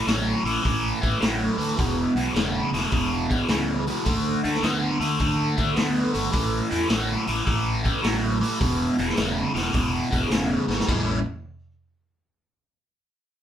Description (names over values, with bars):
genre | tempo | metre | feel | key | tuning
blues rock power trio and southern rock | 106 BPM | 4/4 | swing 67% on 8ths | A major | A4 = 445 Hz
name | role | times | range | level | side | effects
cranked stack guitar | riff | 0.0-11.2 s | E2 to E4 | -23 LUFS | equal | overdrive, phaser
fuzz fingered electric bass | bass | 0.1-11.2 s | E1 to E2 | -30 LUFS | equal | overdrive
raw garage drum kit | drums | 0.1-11.1 s | china cymbal, hi-hat, kick drum, snare drum, toms | -27 LUFS | equal | none
room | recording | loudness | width
wet studio ambience, RT60 0.5 s | band playing live in one room | -21 LUFS | side -10 dB against mid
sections
0.0-10.9 A section; 10.9-13.1 B section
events
drum fill 10.6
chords
0.0 A5; 1.8 E5; 4.1 D5; 6.3 A5; 8.6 E5; 10.9 A7